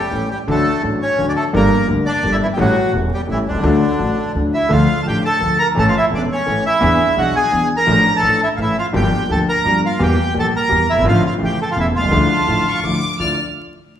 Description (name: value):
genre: tango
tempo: 170 BPM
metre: 3/4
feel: rubato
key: D major, D harmonic minor from 4.7 s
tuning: A4 = 440 Hz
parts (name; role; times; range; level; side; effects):
- bandoneon; melody; 0.0-13.4 s; D3 to Bb5; -17 LUFS; right 1 dB; none
- warm concert grand piano; accompaniment; 0.1-13.3 s; E1 to A4; -18 LUFS; left 1 dB; none
- upright bass; bass; 0.1-13.3 s; E1 to E2; -22 LUFS; equal; none
- warm chamber violin section; second line; 12.3-13.4 s; A5 to F6; -22 LUFS; left 1 dB; none
room: wet large studio reverb, RT60 1.2 s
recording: band playing live in one room, vinyl crackle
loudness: -14 LUFS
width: side -10 dB against mid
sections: 0.0-4.7 A section; 4.7-13.2 B section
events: none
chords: 0.5 D; 1.5 Gmadd9; 2.6 A7; 3.6 D; 4.7 Dm; 5.8 A; 6.8 E7; 7.9 Dm/A; 8.6 A; 8.9 Gm7; 10.0 Edim; 11.1 Dm/A; 11.4 A; 12.1 Dmadd9